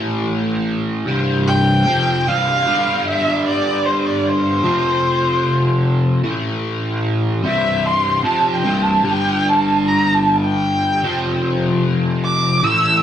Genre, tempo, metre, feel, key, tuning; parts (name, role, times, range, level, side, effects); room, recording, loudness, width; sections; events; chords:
rock; 75 BPM; 4/4; straight; C major; A4 = 441 Hz
cranked stack guitar; riff; 0.0-13.0 s; C2 to A3; -17 LUFS; equal; overdrive, rotary speaker
dark erhu; melody; 1.5-13.0 s; C5 to E6; -18 LUFS; equal
moderate large studio reverb, RT60 0.8 s; band playing live in one room; -15 LUFS; side -10 dB against mid
0.0-13.0 A section
erhu solo 0.0-13.0
0.0 A5; 1.1 C5; 2.6 G5; 4.6 F5; 6.2 A5; 7.4 C5; 9.0 G5; 11.0 F5